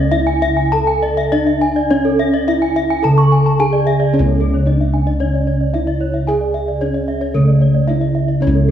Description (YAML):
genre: Balinese gamelan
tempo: 111 BPM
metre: 4/4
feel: uneven beats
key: C# pelog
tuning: A4 = 440 Hz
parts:
  - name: gamelan-type bronze metallophone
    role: melody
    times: 0.0-8.7 s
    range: A3 to A4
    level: -19 LUFS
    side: equal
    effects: none
  - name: gamelan-type bronze metallophone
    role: arpeggios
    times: 0.0-8.7 s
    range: G#4 to A5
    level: -21 LUFS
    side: left 3 dB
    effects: none
  - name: gamelan-type bossed gongs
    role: bass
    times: 0.0-8.7 s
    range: C#2 to G#4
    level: -16 LUFS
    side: equal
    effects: none
  - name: gamelan-type bronze metallophone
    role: arpeggios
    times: 0.3-8.7 s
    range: A4 to C#6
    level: -23 LUFS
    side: right 6 dB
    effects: none
room: wet recital hall reverb, RT60 1.8 s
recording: heard from further back in the room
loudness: -13 LUFS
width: side -10 dB against mid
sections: 0.0-4.1 A section; 4.1-8.7 B section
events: none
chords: none